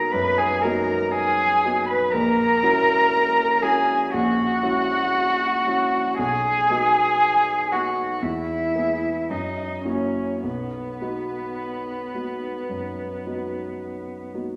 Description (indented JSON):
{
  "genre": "classical, slow romantic movement for piano trio",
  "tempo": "51-60 BPM",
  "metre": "4/4",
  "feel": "rubato",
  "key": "B major",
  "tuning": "A4 = 440 Hz",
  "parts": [
    { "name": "muted violin", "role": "melody", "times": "0.0-14.3 s", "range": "B4 to B5", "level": "-32 LUFS", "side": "equal", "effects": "none" },
    { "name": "muted cello", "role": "second line", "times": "0.0-14.3 s", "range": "B3 to B4", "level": "-24 LUFS", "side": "equal", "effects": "none" },
    { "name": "dark grand piano", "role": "accompaniment", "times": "0.0-14.6 s", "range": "A#1 to G#4", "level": "-29 LUFS", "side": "equal", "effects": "none" }
  ],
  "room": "wet recital hall reverb, RT60 1.3 s",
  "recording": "none",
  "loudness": "-22 LUFS",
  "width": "mono",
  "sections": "0.0-14.6 A section",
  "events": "none",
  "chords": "0.0 B; 2.1 F#7/A#; 6.2 B; 8.2 E; 9.3 F#7; 10.4 B"
}